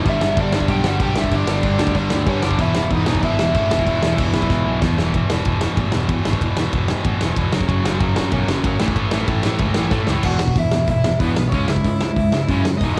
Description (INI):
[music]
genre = punk rock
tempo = 188 BPM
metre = 4/4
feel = straight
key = unclear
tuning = A4 = 440 Hz
[part]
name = raw garage guitar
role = melody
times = 0.0-4.8, 10.3-13.0 s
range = B3 to G5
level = -26 LUFS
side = equal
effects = overdrive, cassette tape, analog delay
[part]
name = distorted electric guitar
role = riff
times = 0.0-13.0 s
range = E2 to C#4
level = -25 LUFS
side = equal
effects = distortion, cassette tape
[part]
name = sludgy distorted guitar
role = riff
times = 0.0-5.1, 7.7-13.0 s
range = E2 to C#4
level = -28 LUFS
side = equal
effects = overdrive, cassette tape
[part]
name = modern bright picked electric bass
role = bass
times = 0.0-13.0 s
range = E1 to A2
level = -25 LUFS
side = equal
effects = none
[part]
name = big rock drum kit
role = drums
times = 0.1-13.0 s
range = crash cymbal, hi-hat, kick drum, ride cymbal, snare drum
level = -24 LUFS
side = equal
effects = none
[sound]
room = light reverb, studio reverb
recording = home recording on cassette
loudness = -19 LUFS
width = mono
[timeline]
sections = 0.0-5.1 A section; 5.1-10.2 B section; 10.2-13.0 C section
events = drum fill 4.5-5.1, 9.9-10.2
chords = 0.1 G; 2.6 E5; 7.5 F#5; 8.8 A; 10.2 E5; 11.5 C#m